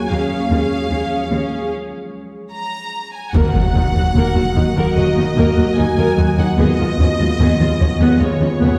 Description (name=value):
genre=cinematic, hybrid orchestral and electronic film score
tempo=74 BPM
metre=4/4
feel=straight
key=Eb minor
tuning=A4 = 440 Hz
part: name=rich studio violin section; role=melody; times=0.0-8.8 s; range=Db5 to Bb5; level=-27 LUFS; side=equal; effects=none
part: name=dark studio viola section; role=accompaniment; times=0.0-8.8 s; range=Eb3 to Bb4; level=-24 LUFS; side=equal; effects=none
part: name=glassy FM pad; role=sustained chords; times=0.0-8.8 s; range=F3 to Eb5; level=-26 LUFS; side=equal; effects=ensemble chorus, built-in reverb
part: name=rich symphonic cello section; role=bass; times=0.1-8.7 s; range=Eb2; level=-21 LUFS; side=equal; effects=none
part: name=warm French horn section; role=sustained chords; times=3.3-8.8 s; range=Bb3 to Gb4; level=-26 LUFS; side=equal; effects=none
part: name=warm symphonic double bass section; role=bass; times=3.3-8.7 s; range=Eb2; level=-22 LUFS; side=equal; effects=none
part: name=taiko ensemble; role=drums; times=3.3-4.9 s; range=none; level=-26 LUFS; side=equal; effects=none
part: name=impact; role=sound effects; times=3.3-6.6 s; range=none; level=-25 LUFS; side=equal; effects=none
room=wet scoring stage reverb, RT60 2.1 s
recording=heard from further back in the room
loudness=-16 LUFS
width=mono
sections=0.0-3.3 A section; 3.3-8.8 B section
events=break 1.7-3.3; impact 3.3-6.6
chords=0.1 Db/Eb; 3.3 Ebm; 6.6 Db7/Eb